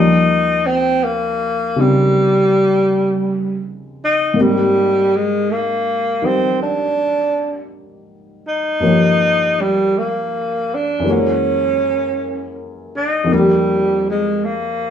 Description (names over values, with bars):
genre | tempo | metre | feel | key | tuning
jazz | 54 BPM | 4/4 | swing 67% on 8ths | Eb major | A4 = 435 Hz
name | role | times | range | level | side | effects
breathy tenor saxophone | melody | 0.0-14.9 s | G3 to Eb4 | -16 LUFS | equal | none
warm baby grand piano | accompaniment | 0.0-14.9 s | Eb2 to Db5 | -19 LUFS | left 1 dB | none
room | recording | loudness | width
wet club reverb, RT60 0.8 s | heard from further back in the room | -14 LUFS | side -8 dB against mid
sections
0.0-14.9 A section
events
none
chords
0.0 Eb7; 4.3 Abmaj7; 8.8 Gm7b5; 11.0 Gb9; 13.3 Fm11